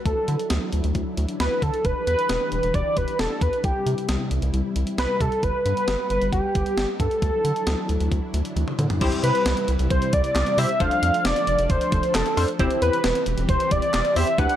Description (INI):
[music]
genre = synth-pop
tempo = 134 BPM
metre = 4/4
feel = straight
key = unclear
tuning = A4 = 440 Hz
[part]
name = string machine, cellos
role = sustained chords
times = 0.0-14.6 s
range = C3 to F#5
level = -30 LUFS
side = left 1 dB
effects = ensemble chorus
[part]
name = octave-doubled lead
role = melody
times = 0.1-14.6 s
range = G4 to F#5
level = -23 LUFS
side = equal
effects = chorus, tape echo
[part]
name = round analog bass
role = bass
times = 0.1-14.5 s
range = E1 to D3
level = -24 LUFS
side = equal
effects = none
[part]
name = clean 12-bit digital drum machine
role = drums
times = 0.1-14.6 s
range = crash cymbal, handclaps, hi-hat, kick drum, snare drum, toms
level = -26 LUFS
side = equal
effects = gated reverb
[part]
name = funky polysynth comp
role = accompaniment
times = 9.0-14.6 s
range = C4 to C5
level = -26 LUFS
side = left 2 dB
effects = chorus, phaser
[sound]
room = light reverb, digital ambience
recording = none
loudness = -20 LUFS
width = side -11 dB against mid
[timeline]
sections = 0.0-9.0 A section; 9.0-14.6 B section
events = drum fill 8.6-9.0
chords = 0.1 Dadd9; 1.8 Em7; 3.6 C; 5.4 Gmaj7; 7.2 Dadd9; 9.0 C; 10.8 F6; 12.6 C/E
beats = | 0.06 0.50 0.95 1.40 | 1.85 2.30 2.74 3.19 | 3.64 4.09 4.53 4.98 | 5.43 5.88 6.33 6.77 | 7.22 7.67 8.12 8.56 | 9.01 9.46 9.91 10.36 | 10.80 11.25 11.70 12.15 | 12.59 13.04 13.49 13.94 | 14.38